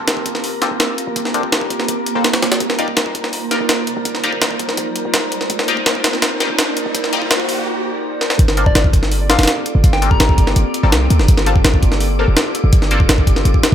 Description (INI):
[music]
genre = drum and bass, jungle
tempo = 166 BPM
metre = 4/4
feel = straight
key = G minor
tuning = A4 = 443 Hz
[part]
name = warm 808-style bass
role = bass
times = 0.0-13.7 s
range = F1 to D2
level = -16 LUFS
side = equal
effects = high-pass filter
[part]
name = wind-like tuned noise texture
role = texture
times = 0.0-13.7 s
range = Bb3 to D6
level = -26 LUFS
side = right 4 dB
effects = built-in reverb
[part]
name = jungle sampler-style drum kit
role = drums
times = 0.1-13.7 s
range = hi-hat, kick drum, snare drum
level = -16 LUFS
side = equal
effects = high-pass filter on snare, high-pass filter on hats, high-pass filter on kick, high-pass filter on room
[part]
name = band-passed chord stab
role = stabs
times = 0.6-13.0 s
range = Bb3 to D5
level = -24 LUFS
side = left 4 dB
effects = phaser, analog chorus, dub echo
[part]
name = riser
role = sound effects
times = 4.6-7.7 s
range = none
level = -26 LUFS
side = equal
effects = none
[part]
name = soft struck synth lead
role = melody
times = 8.7-10.5 s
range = D5 to Bb5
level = -24 LUFS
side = left 2 dB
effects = chorus, dub echo
[sound]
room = light reverb, digital ambience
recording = none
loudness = -13 LUFS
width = side -10 dB against mid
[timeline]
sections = 0.0-8.4 A section; 8.4-13.7 B section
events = build-up 0.0-8.4; riser 4.6-7.7; break 7.7-8.4; drum fill 8.2; drop 8.4-13.7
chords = 0.0 Gm11; 2.6 Cm11; 8.4 Gm11